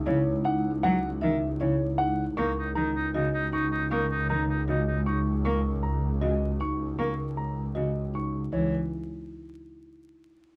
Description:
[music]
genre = classical, minimalist pattern music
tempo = 156 BPM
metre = 4/4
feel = straight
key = C# dorian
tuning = A4 = 441 Hz
[part]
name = rich symphonic double bass section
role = bass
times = 0.0-8.7 s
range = C#2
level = -32 LUFS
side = equal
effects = none
[part]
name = dark baby grand piano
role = melody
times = 0.1-8.7 s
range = C#5 to C#6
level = -35 LUFS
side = equal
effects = none
[part]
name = rich cello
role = accompaniment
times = 0.1-8.7 s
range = C#3 to A#3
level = -33 LUFS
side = equal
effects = none
[part]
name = marimba with soft mallets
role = arpeggios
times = 0.1-8.7 s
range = D#4 to A#4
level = -34 LUFS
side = equal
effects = none
[part]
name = warm oboe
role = second line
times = 2.4-5.2 s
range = D#4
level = -34 LUFS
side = equal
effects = none
[sound]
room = light reverb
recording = close, detailed microphones, vinyl crackle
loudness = -28 LUFS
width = mono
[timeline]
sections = 0.0-8.5 A section; 8.5-10.1 B section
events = none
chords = 0.0 C#madd9; 2.4 D#m/C#; 8.5 C#m

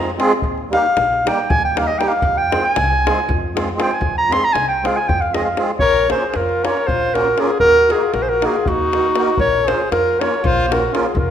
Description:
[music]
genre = balkan folk, Balkan wedding band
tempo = 235 BPM (eighths)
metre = 7/8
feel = straight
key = F minor, Bb minor from 5.8 s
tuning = A4 = 442 Hz
[part]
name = clear clarinet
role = melody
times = 0.0-11.3 s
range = Gb4 to C6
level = -16 LUFS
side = equal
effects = none
[part]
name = musette accordion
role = accompaniment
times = 0.0-11.1 s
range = G3 to Bb4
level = -22 LUFS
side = right 2 dB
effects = none
[part]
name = upright bass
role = bass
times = 0.0-11.3 s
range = F1 to F2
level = -26 LUFS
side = equal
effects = none
[part]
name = davul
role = percussion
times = 0.1-11.3 s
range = none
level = -24 LUFS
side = left 2 dB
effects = none
[part]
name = mellow trumpet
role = second line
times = 5.8-11.3 s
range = Eb4 to Bb4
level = -23 LUFS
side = left 4 dB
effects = none
[sound]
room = wet recital hall reverb, RT60 1.4 s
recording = minimal, uncompressed stereo recording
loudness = -14 LUFS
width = side -9 dB against mid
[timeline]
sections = 0.0-5.8 A section; 5.8-11.3 B section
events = clarinet solo 0.0-5.8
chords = 0.4 Eb; 2.2 Fm; 5.8 Bbm; 7.6 Ebm; 9.4 Bbm

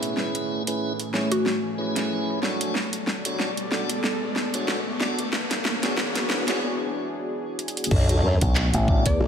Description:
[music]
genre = glitch hop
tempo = 93 BPM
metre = 4/4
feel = swing 56% on 16ths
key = B dorian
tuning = A4 = 440 Hz
[part]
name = dark analog pad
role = sustained chords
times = 0.0-9.3 s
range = E3 to G#5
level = -30 LUFS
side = equal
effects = chorus, sidechain pumping
[part]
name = tonewheel organ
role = stabs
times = 0.0-9.1 s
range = C#4 to D5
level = -30 LUFS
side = right 1 dB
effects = slow rotary speaker, sidechain pumping, dub echo
[part]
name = dubstep drum kit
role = drums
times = 0.0-9.2 s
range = crash cymbal, handclaps, hi-hat, rim click, snare drum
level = -28 LUFS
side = equal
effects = high-pass filter on hats, studio reverb, high-pass filter on snare, high-pass filter on toms, high-pass filter on cymbals
[part]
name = riser and sub drop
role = sound effects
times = 0.2-9.3 s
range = none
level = -30 LUFS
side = equal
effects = none
[part]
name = woody wave-folded pluck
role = melody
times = 1.3-2.0, 9.1-9.2 s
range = F#4 to D5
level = -32 LUFS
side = left 2 dB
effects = none
[part]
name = formant-sweep wobble bass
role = bass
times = 7.9-9.3 s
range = B1 to F#2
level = -21 LUFS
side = equal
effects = chorus
[part]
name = electronic kick drum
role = drums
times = 7.9-9.2 s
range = none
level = -21 LUFS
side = equal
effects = studio reverb
[part]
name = slap bass with an envelope filter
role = bass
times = 8.4-9.2 s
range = A1 to E2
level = -23 LUFS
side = equal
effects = none
[sound]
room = moderate echo chamber reverb, RT60 1.8 s, digital ambience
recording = echo-heavy mix, high-pass filter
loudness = -22 LUFS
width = side -8 dB against mid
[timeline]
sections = 0.0-7.9 A section; 7.9-9.3 B section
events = build-up 0.0-7.9; drum fill 0.0-6.6, 7.6-7.9; riser 0.2-6.6; break 6.6-7.9; drop 7.9-9.3; impact 7.9-9.3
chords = 0.0 Amaj7; 2.8 Bm7; 5.3 E13; 7.9 Bm7

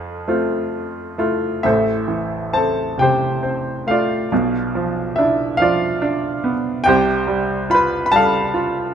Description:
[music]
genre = classical, lyrical solo piano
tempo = 44-48 BPM (dotted quarters)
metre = 6/8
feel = rubato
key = unclear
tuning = A4 = 441 Hz
[part]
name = clear baby grand piano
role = solo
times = 0.0-8.9 s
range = A1 to B5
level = -16 LUFS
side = right 1 dB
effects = none
[sound]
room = light reverb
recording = close, detailed microphones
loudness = -16 LUFS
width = side -8 dB against mid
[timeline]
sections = 0.0-1.6 A section; 1.6-8.9 B section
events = none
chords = 0.0 Fmaj7; 1.6 Am; 4.3 Bdim; 6.9 Csus4

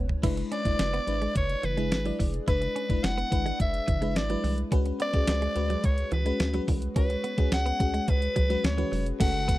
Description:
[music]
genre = 1980s-style pop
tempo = 107 BPM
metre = 4/4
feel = straight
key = unclear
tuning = A4 = 444 Hz
[part]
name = FM electric piano with soft pad layer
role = accompaniment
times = 0.0-9.6 s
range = G#3 to D5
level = -32 LUFS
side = left 3 dB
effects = chorus
[part]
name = direct-recorded clean electric guitar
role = riff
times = 0.0-9.6 s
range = E3 to E4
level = -36 LUFS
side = right 4 dB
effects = wide subtle chorus, slapback echo
[part]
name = rubbery square bass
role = bass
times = 0.0-9.6 s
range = E#1 to D2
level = -30 LUFS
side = equal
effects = none
[part]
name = clean 12-bit digital drum machine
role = drums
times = 0.1-9.6 s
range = crash cymbal, hi-hat, kick drum, snare drum, toms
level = -27 LUFS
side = equal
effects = none
[part]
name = raspy soprano saxophone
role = melody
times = 0.5-9.6 s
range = B4 to F#5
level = -30 LUFS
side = equal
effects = slapback echo
[sound]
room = little or no reverb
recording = dry, close 1970s-style studio recording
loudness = -24 LUFS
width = side -16 dB against mid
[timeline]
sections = 0.2-9.2 A section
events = drum fill 0.0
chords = 0.2 E7

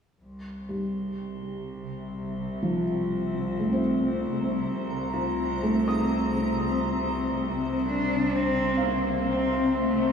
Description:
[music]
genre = ambient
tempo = 63 BPM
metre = 4/4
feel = straight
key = unclear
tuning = A4 = 440 Hz
[part]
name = granular cloud pad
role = sustained chords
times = 1.4-10.1 s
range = C3 to Bb5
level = -29 LUFS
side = left 1 dB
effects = built-in reverb, shimmer reverb
[part]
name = bright symphonic cello section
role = bass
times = 0.2-10.1 s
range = C2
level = -32 LUFS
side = equal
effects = tube saturation
[part]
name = glass harmonica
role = texture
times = 0.2-10.1 s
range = C6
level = -40 LUFS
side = left 2 dB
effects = shimmer reverb
[part]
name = felt-muted upright piano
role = arpeggios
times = 0.7-10.1 s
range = F3 to Eb6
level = -29 LUFS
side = equal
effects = shimmer reverb, diffuse ambient delay
[part]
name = dark cello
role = melody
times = 7.9-10.1 s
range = A3 to D4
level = -26 LUFS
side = left 1 dB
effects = shimmer reverb, diffuse ambient delay
[sound]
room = wet lush hall reverb, RT60 3.0 s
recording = studio reverb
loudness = -24 LUFS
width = side -6 dB against mid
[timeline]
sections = 0.2-10.1 A section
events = fade-in on glass harmonica 0.2-10.1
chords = 0.2 Cm7

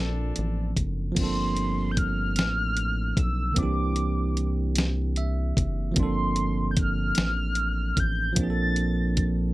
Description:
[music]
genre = slow six-eight R&B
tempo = 50 BPM (dotted quarters)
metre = 6/8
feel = straight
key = G dorian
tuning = A4 = 440 Hz
[part]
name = bell-like tine electric piano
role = accompaniment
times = 0.0-9.5 s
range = D3 to E5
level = -29 LUFS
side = right 3 dB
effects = none
[part]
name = warm horn section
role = stabs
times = 0.0-0.7 s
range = F3 to A4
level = -37 LUFS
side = left 2 dB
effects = none
[part]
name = rubbery square bass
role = bass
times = 0.0-9.5 s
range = F#1 to C2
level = -28 LUFS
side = equal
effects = none
[part]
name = dusty soul sampler-style drum kit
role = drums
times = 0.4-9.4 s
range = crash cymbal, hi-hat, kick drum, snare drum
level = -26 LUFS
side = equal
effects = none
[part]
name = mellow horn-like synth lead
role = melody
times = 1.2-9.2 s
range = C6 to A6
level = -30 LUFS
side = equal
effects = chorus
[sound]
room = little or no reverb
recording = none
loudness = -23 LUFS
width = side -18 dB against mid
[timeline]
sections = 0.0-1.2 A section; 1.2-9.5 B section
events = tine electric piano fill 4.8-6.0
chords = 0.0 Bbmaj9; 1.2 Gm11; 3.6 C9; 6.0 Gm11; 8.4 Bbmaj9

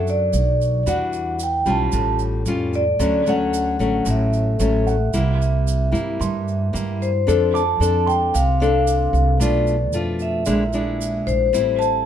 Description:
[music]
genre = bossa nova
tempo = 112 BPM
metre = 4/4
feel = straight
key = F major from 7.3 s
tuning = A4 = 440 Hz
[part]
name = vibraphone with medium mallets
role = melody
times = 0.0-12.1 s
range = C5 to A5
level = -22 LUFS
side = equal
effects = plate reverb
[part]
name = dark grand piano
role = accompaniment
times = 0.0-0.9, 4.9-9.6 s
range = F#5 to D6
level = -34 LUFS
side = right 9 dB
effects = none
[part]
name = nylon-string guitar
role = accompaniment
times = 0.0-12.1 s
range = G2 to A4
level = -22 LUFS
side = left 3 dB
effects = none
[part]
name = upright bass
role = bass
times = 0.0-12.0 s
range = A1 to G2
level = -22 LUFS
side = right 1 dB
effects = none
[part]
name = tube shaker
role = percussion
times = 0.1-12.1 s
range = none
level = -35 LUFS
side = right 9 dB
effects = none
[sound]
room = light reverb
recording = dark, warm production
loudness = -17 LUFS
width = side -9 dB against mid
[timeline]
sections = 0.0-7.3 A section; 7.3-12.1 B section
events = none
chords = 0.0 Bm9; 0.9 Em9; 1.9 Aaug7; 3.0 Dmaj7; 5.1 C7; 7.3 F6; 9.4 Bm7b5; 10.5 Bb7#11; 11.5 Am7

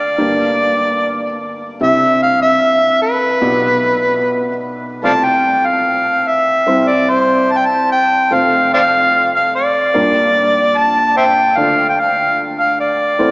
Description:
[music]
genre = acoustic folk-pop ballad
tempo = 74 BPM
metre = 4/4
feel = straight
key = F major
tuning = A4 = 440 Hz
[part]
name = overdriven harmonica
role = melody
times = 0.0-13.3 s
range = B4 to A5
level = -12 LUFS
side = equal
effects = none
[part]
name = felt-muted upright piano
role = accompaniment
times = 0.0-13.3 s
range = F1 to E5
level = -19 LUFS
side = equal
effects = none
[sound]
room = wet cathedral reverb, RT60 4.5 s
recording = recorded in a church or concert hall, small speaker sound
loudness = -11 LUFS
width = side -32 dB against mid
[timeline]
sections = 0.0-13.3 A section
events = none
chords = 0.2 Gm; 1.8 C; 3.4 G7/B; 5.0 F/C; 6.7 C; 8.3 F; 9.9 Bb6; 11.6 Dm

